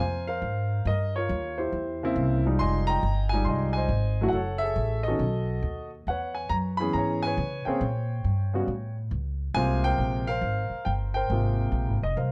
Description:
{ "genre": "jazz piano trio", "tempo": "138 BPM", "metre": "4/4", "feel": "swing 66% on 8ths", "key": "Ab major", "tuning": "A4 = 440 Hz", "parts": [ { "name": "warm grand piano", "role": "melody", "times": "0.0-12.3 s", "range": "C3 to C6", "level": "-30 LUFS", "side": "equal", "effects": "none" }, { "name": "upright bass", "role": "bass", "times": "0.0-12.3 s", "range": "F1 to C#3", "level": "-30 LUFS", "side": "equal", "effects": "none" } ], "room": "light reverb", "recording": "dark, warm production", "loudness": "-27 LUFS", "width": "mono", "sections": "0.0-12.3 A section", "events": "none", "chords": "0.0 Ab69; 0.9 Gm7b5; 1.7 C7b9; 2.6 Fm9; 4.3 Gbm9; 5.2 B7; 6.1 E6; 7.8 Bbmadd9; 8.7 A; 9.6 Ab69", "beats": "0.42 | 0.85 1.29 1.72 2.16 | 2.59 3.03 3.46 3.90 | 4.33 4.77 5.20 5.64 | 6.07 6.51 6.94 7.38 | 7.81 8.25 8.68 9.12 | 9.55 9.99 10.42 10.86 | 11.29 11.72 12.16" }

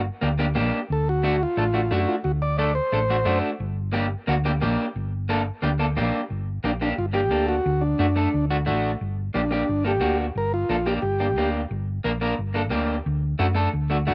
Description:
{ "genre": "latin", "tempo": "178 BPM", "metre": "4/4", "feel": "straight", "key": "G harmonic minor", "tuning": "A4 = 440 Hz", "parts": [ { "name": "hollow-body short-scale fingered electric bass", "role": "bass", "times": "0.0-14.1 s", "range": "G1 to F#2", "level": "-28 LUFS", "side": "equal", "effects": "none" }, { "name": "electric guitar at the edge of break-up", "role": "accompaniment", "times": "0.2-14.1 s", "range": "A3 to Bb4", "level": "-28 LUFS", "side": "equal", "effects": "none" }, { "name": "combo organ", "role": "melody", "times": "0.9-3.4, 6.7-11.5 s", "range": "D4 to D5", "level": "-27 LUFS", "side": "equal", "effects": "slapback echo" } ], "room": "little or no reverb", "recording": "recorded outdoors, with no room sound", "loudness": "-24 LUFS", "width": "mono", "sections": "0.0-6.3 A section; 6.3-14.1 B section", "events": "none", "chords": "0.0 Gm; 0.9 D7; 3.6 Gm; 7.7 D; 9.0 Gm; 13.1 D", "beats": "0.22 0.56 | 0.90 1.23 1.57 1.91 | 2.25 2.58 2.92 3.26 | 3.60 3.94 4.28 4.61 | 4.95 5.29 5.63 5.96 | 6.30 6.64 6.98 7.32 | 7.66 7.99 8.33 8.67 | 9.01 9.35 9.68 10.02 | 10.36 10.70 11.04 11.37 | 11.71 12.05 12.39 12.72 | 13.06 13.40 13.74 14.08" }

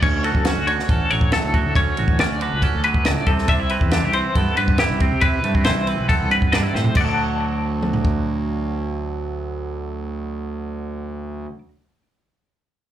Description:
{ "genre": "math rock and midwest emo", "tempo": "138 BPM", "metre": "4/4", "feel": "straight", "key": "D major", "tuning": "A4 = 442 Hz", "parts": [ { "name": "twangy electric guitar", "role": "accompaniment", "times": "0.0-11.7 s", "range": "D2 to F#4", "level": "-26 LUFS", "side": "right 9 dB", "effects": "slapback echo" }, { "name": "twangy electric guitar", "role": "arpeggios", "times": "0.0-11.6 s", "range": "F#4 to D6", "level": "-22 LUFS", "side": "left 4 dB", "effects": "tremolo, digital delay, slapback echo" }, { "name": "fuzz fingered electric bass", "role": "bass", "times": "0.0-11.5 s", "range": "A1 to D3", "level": "-24 LUFS", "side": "equal", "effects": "overdrive" }, { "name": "compact cocktail drum kit", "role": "drums", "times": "0.0-8.2 s", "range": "crash cymbal, kick drum, ride cymbal, snare drum, toms", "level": "-21 LUFS", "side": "equal", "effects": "none" } ], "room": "little or no reverb", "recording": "live gig heard through the venue's PA, club reverb", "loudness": "-18 LUFS", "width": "side -11 dB against mid", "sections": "0.0-7.0 A section; 7.0-10.5 B section", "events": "drum fill 6.8", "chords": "0.0 Dmaj7; 3.3 Cmaj7; 7.0 D", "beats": "| 0.03 0.46 0.89 1.32 | 1.76 2.19 2.62 3.06 | 3.49 3.92 4.36 4.79 | 5.23 5.66 6.10 6.54 | 6.97 7.41 7.84 8.28 | 8.72 9.15 9.59 10.03" }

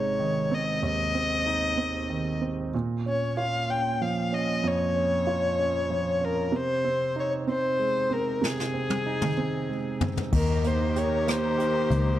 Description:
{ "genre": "six-eight pop ballad", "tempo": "63 BPM (dotted quarters)", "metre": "6/8", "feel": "straight", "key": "Ab major", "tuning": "A4 = 440 Hz", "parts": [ { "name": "dark violin", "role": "melody", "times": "0.0-12.2 s", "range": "Ab4 to G5", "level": "-27 LUFS", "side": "left 3 dB", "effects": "slapback echo" }, { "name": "clear grand piano", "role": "accompaniment", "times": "0.0-12.2 s", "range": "Eb2 to G4", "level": "-28 LUFS", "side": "right 4 dB", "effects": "none" }, { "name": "jazz brush drum kit", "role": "drums", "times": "8.4-12.1 s", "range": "crash cymbal, hi-hat, kick drum, rim click, snare drum, toms", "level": "-30 LUFS", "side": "left 1 dB", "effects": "none" }, { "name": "warm studio string section", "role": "sustained chords", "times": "10.3-12.2 s", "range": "Eb3 to Bb4", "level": "-32 LUFS", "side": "left 4 dB", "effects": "none" }, { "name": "vintage muted picked electric bass", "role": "bass", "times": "10.3-12.2 s", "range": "Db2 to Eb2", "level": "-26 LUFS", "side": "left 1 dB", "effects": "none" } ], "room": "light reverb, studio reverb", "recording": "dark, warm production", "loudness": "-24 LUFS", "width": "side -12 dB against mid", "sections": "0.0-10.3 A section; 10.3-12.2 B section", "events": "drum fill 8.4-10.3", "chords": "0.0 Ab; 2.7 Bbm; 6.5 Ab/C; 10.3 Eb", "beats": "| 0.83 1.78 | 2.74 3.69 | 4.64 5.59 | 6.53 7.47 | 8.42 9.37 | 10.33 11.28" }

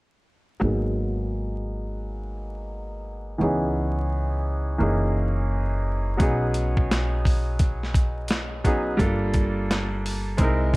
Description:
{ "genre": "hip hop, jazz-hop", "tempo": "86 BPM", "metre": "4/4", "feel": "swing 62% on 16ths", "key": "unclear", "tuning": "A4 = 435 Hz", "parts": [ { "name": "bright grand piano", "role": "accompaniment", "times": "0.6-10.8 s", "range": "E3 to Bb4", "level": "-27 LUFS", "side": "equal", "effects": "low-pass filter" }, { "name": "upright bass", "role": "bass", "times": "0.6-10.8 s", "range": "F#1 to C#2", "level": "-26 LUFS", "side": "equal", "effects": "none" }, { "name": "dusty soul sampler-style drum kit", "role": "drums", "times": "6.2-10.8 s", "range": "hi-hat, kick drum, snare drum", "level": "-23 LUFS", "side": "equal", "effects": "none" } ], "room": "small room reverb", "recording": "vinyl crackle", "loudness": "-22 LUFS", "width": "side -22 dB against mid", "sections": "0.6-10.8 A section", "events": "filter sweep on grand piano 0.6-10.8", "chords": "0.6 G#m7; 3.4 C#m7; 4.8 F#13; 6.2 B6; 9.0 Gm9", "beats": "| 0.62 1.32 2.02 2.71 | 3.41 4.11 4.81 5.50 | 6.20 6.90 7.60 8.30 | 8.99 9.69 10.39" }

